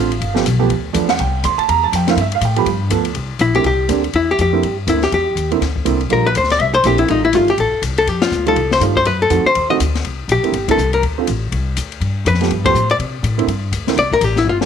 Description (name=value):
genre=jazz, small-group swing and bop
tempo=244 BPM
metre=4/4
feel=swing 60% on 8ths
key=C mixolydian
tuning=A4 = 440 Hz
part: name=warm upright piano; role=accompaniment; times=0.0-14.7 s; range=D3 to C6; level=-19 LUFS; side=right 13 dB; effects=none
part: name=upright bass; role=bass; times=0.0-14.7 s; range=G1 to C3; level=-19 LUFS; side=left 2 dB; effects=none
part: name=open jazz drum kit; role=drums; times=0.1-14.7 s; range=hi-hat, kick drum, ride cymbal, snare drum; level=-25 LUFS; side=left 9 dB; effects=none
part: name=archtop guitar, miked and amplified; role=melody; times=3.4-14.6 s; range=Eb4 to E5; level=-15 LUFS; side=left 3 dB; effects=none
room=light reverb, studio ambience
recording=1960s-style stereo with parts hard left and right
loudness=-14 LUFS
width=side -8 dB against mid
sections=0.0-3.2 A section; 3.2-14.7 B section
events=band accent 8.2, 10.7, 12.6; drum fill 14.5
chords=0.2 G9; 1.2 C9; 2.7 G9; 3.2 C9; 6.1 Gm7; 6.6 C9; 7.1 F9; 9.1 F#dim7; 10.0 C9; 11.0 D7(no3); 12.0 G9; 13.0 Csus2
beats=| 0.20 0.45 0.69 0.94 | 1.19 1.43 1.68 1.92 | 2.17 2.42 2.66 2.91 | 3.15 3.40 3.64 3.89 | 4.14 4.38 4.63 4.87 | 5.12 5.37 5.61 5.86 | 6.10 6.35 6.59 6.84 | 7.09 7.33 7.58 7.83 | 8.07 8.32 8.56 8.81 | 9.06 9.30 9.55 9.79 | 10.04 10.29 10.53 10.78 | 11.02 11.27 11.51 11.76 | 12.01 12.25 12.50 12.74 | 12.99 13.23 13.48 13.72 | 13.97 14.21 14.46